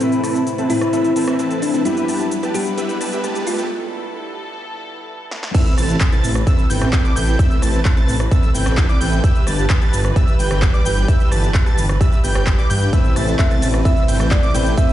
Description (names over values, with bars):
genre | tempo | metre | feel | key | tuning
EDM, festival progressive house | 130 BPM | 4/4 | straight | A minor | A4 = 440 Hz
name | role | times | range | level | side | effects
thumb-piano-like synth pluck | melody | 0.0-3.7, 13.4-14.9 s | C4 to E5 | -22 LUFS | equal | chorus, ping-pong delay
fingerpicked steel-string acoustic guitar | accompaniment | 0.0-3.7, 12.9-14.9 s | G2 to B4 | -24 LUFS | left 5 dB | sidechain pumping
warm studio string section | sustained chords | 0.0-14.9 s | G2 to B4 | -28 LUFS | right 2 dB | sidechain pumping
dense compressed supersaw | riff | 0.0-14.9 s | C4 to A5 | -24 LUFS | right 1 dB | sidechain pumping, low-pass filter, ping-pong delay
big-room dance drum kit | drums | 0.0-14.9 s | cabasa, crash cymbal, handclaps, hi-hat, ride cymbal, rim click, snare drum | -26 LUFS | equal | none
riser | sound effects | 0.4-3.7 s | none | -32 LUFS | right 2 dB | none
wide unison lead | arpeggios | 5.5-14.9 s | D6 to A6 | -27 LUFS | equal | sidechain pumping, ping-pong delay
electronic kick drum | drums | 5.5-14.9 s | none | -16 LUFS | equal | none
wide detuned saw bass | bass | 5.8-14.7 s | G1 to G2 | -19 LUFS | equal | chorus, sidechain pumping
room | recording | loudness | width
digital ambience | played on a big sound system in a bare room, large studio reverb, high-pass filter, nothing above 11.0 kHz | -14 LUFS | side -13 dB against mid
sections
0.0-5.5 A section; 5.5-14.9 B section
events
build-up 0.0-5.5; filter sweep on supersaw synth 0.0-5.5; filter sweep 0.0-5.5; riser 0.4-3.7; break 3.7-5.5; drum fill 5.3; drop 5.5-14.9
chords
0.0 Amadd9; 1.9 Em/G; 5.5 Amadd9; 9.2 Em/G; 12.9 Amadd9